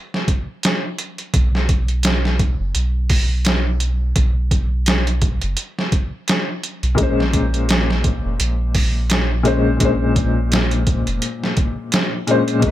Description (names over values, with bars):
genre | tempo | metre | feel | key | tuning
trip hop | 85 BPM | 4/4 | swing 57% on 16ths | unclear | A4 = 440 Hz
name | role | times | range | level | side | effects
trip hop sampler-style drum kit | drums | 0.1-12.7 s | hi-hat, kick drum, snare drum | -19 LUFS | equal | overdrive
soft dub sub bass | bass | 1.3-12.7 s | F1 to B1 | -19 LUFS | equal | none
felt-muted upright piano | accompaniment | 6.9-12.7 s | Bb2 to C5 | -19 LUFS | left 2 dB | tremolo, tape echo
room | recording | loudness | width
little or no reverb | none | -16 LUFS | side -14 dB against mid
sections
0.0-12.7 A section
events
none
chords
0.0 N.C.; 1.3 B5; 7.0 Bbm9